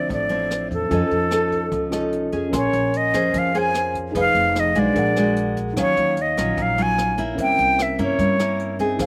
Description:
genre	bossa nova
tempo	148 BPM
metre	4/4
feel	straight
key	Bb minor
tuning	A4 = 440 Hz
part	breathy silver concert flute	melody	0.0-9.1 s	A4 to Ab5	-23 LUFS	equal	slapback echo
part	nylon-string guitar	accompaniment	0.0-9.1 s	A2 to C5	-27 LUFS	equal	slapback echo
part	tine electric piano	accompaniment	0.0-9.1 s	C4 to C6	-29 LUFS	equal	slapback echo
part	upright bass	bass	0.0-9.1 s	F1 to G2	-31 LUFS	equal	none
part	jazz brush drum kit	drums	0.1-9.1 s	hi-hat, kick drum, rim click	-34 LUFS	equal	none
room	little or no reverb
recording	recorded outdoors, with no room sound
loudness	-21 LUFS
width	mono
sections	0.0-2.5 A section; 2.5-9.1 B section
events	none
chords	0.0 Dm9; 0.9 F7alt; 2.5 Bbm9; 4.1 Fm7b5; 5.0 Bbaug7; 5.8 Ebm9; 7.4 C7b9

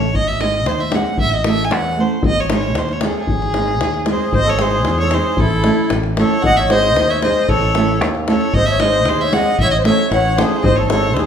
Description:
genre	balkan folk, Balkan wedding band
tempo	114 BPM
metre	2/4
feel	straight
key	G# phrygian dominant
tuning	A4 = 437 Hz
part	clear fiddle	melody	0.0-11.3 s	G#4 to G#5	-19 LUFS	right 1 dB	none
part	nylon-string guitar	accompaniment	0.0-11.1 s	G#3 to A4	-21 LUFS	right 2 dB	none
part	fingered electric bass	bass	0.0-11.3 s	G#1 to E2	-21 LUFS	equal	none
part	davul	percussion	0.0-11.3 s	none	-20 LUFS	left 2 dB	none
part	accordion	second line	4.1-11.3 s	E4 to D#5	-19 LUFS	left 2 dB	light tremolo tuning
room	wet large studio reverb, RT60 1.1 s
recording	band playing live in one room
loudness	-13 LUFS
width	side -8 dB against mid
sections	0.0-4.3 A section; 4.3-11.3 A section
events	none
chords	0.1 G#; 1.2 A; 2.2 G#; 5.4 A; 6.4 G#; 7.5 A; 8.5 G#; 9.6 A; 10.6 G#

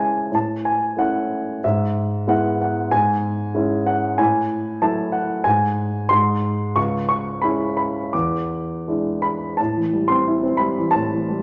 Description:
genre	classical, lyrical solo piano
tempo	78-96 BPM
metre	4/4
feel	rubato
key	unclear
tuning	A4 = 440 Hz
part	warm grand piano	solo	0.0-11.4 s	C#2 to D6	-21 LUFS	equal	none
room	moderate recital hall reverb, RT60 1.5 s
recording	none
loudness	-21 LUFS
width	mono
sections	0.0-9.6 A section; 9.6-11.4 B section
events	none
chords	0.3 A; 1.6 E/G#; 2.9 C#m/G#; 4.2 F#m7/A; 5.5 N.C.; 6.8 C#m; 8.1 E7; 9.6 Am7

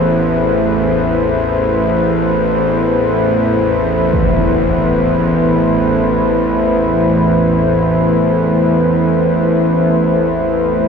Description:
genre	dark ambient drone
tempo	free time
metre	none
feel	none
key	A harmonic minor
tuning	A4 = 440 Hz
part	dark analog pad	sustained chords	0.0-10.9 s	A3 to C5	-14 LUFS	left 1 dB	chorus
part	bowed-like drone	drone	0.0-10.9 s	A1 to E2	-16 LUFS	right 1 dB	built-in reverb
part	bronze singing bowl	texture	0.0-10.9 s	none	barely audible	none	none
part	impact	percussion	4.1-4.4 s	none	-22 LUFS	right 1 dB	low-pass filter on sfx
room	wet cathedral reverb, RT60 5.3 s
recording	in a vast, echoing space, faint mains hum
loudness	-12 LUFS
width	side -6 dB against mid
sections	0.0-10.9 A section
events	none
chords	0.0 Am

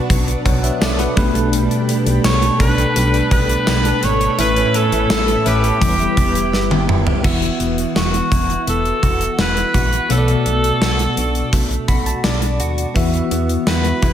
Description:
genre	1980s-style pop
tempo	84 BPM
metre	4/4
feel	straight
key	E dorian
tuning	A4 = 440 Hz
part	bell-like tine electric piano	accompaniment	0.0-14.1 s	A2 to B5	-20 LUFS	left 1 dB	medium stereo tremolo
part	string machine, violas	sustained chords	0.0-7.2 s	D4 to B5	-26 LUFS	left 1 dB	ensemble chorus
part	direct-recorded clean electric guitar	riff	0.0-14.1 s	E3 to A4	-26 LUFS	right 4 dB	analog chorus, digital delay, slapback echo
part	solid FM bass	bass	0.1-14.1 s	D#1 to E2	-21 LUFS	equal	none
part	gated 80s drum kit	drums	0.1-14.1 s	crash cymbal, hi-hat, kick drum, snare drum, tambourine, toms	-19 LUFS	equal	none
part	bright alto saxophone	melody	2.2-14.1 s	F#4 to C#5	-20 LUFS	equal	none
part	clear horn section	stabs	4.4-5.7 s	C#4 to B4	-27 LUFS	left 3 dB	slapback echo
room	wet lush hall reverb, RT60 2.0 s, small room ambience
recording	big arena sound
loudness	-14 LUFS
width	side -10 dB against mid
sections	0.0-7.2 A section; 7.2-14.1 B section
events	band accent 4.4-7.2; drum fill 6.5-7.2; tine electric piano fill 11.5-13.0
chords	0.0 Bm; 1.2 Gadd9/B; 4.4 Aadd9; 5.8 Em; 7.2 Esus2; 10.1 Bm7; 13.0 Esus2

